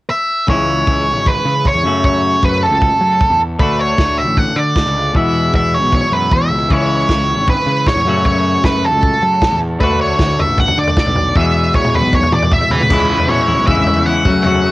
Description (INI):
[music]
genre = indie rock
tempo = 154 BPM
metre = 4/4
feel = straight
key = unclear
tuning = A4 = 442 Hz
[part]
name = octave-fuzz lead guitar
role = melody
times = 0.1-14.7 s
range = A4 to F#5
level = -15 LUFS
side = right 1 dB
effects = distortion
[part]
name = crunchy overdriven guitar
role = riff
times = 0.5-14.7 s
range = E2 to G#4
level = -18 LUFS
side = left 3 dB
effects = none
[part]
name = fuzz picked electric bass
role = bass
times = 0.5-14.7 s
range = G#1 to F#3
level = -19 LUFS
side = equal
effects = overdrive
[part]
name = vintage drum kit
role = drums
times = 0.5-14.6 s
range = crash cymbal, kick drum, snare drum, toms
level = -17 LUFS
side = equal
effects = none
[sound]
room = light reverb, studio reverb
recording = home recording on cassette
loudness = -11 LUFS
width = side -18 dB against mid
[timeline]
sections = 0.5-12.9 A section; 12.9-14.7 B section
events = none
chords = 0.5 C#m7; 1.8 F#m7; 3.6 Dmaj7; 5.2 E6; 6.7 C#m7; 8.1 F#m7; 9.8 Dmaj7; 11.4 E6; 12.9 C#m7